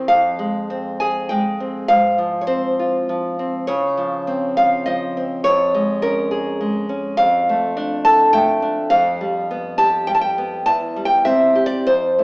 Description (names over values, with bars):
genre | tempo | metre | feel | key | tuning
romantic piece for solo classical guitar | 102 BPM | 3/4 | rubato | F minor, C major from 7.2 s | A4 = 442 Hz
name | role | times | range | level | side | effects
nylon-string guitar | solo | 0.0-12.2 s | E2 to A5 | -16 LUFS | equal | none
room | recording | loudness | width
wet large studio reverb, RT60 1.3 s | band playing live in one room, AM radio sound | -16 LUFS | side -26 dB against mid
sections
0.1-12.2 A section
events
none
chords
0.1 Fm; 1.9 Fm/Ab; 3.7 Dbmaj7; 5.5 Db/F; 7.2 Dm/F; 8.9 G7/F; 10.7 C/E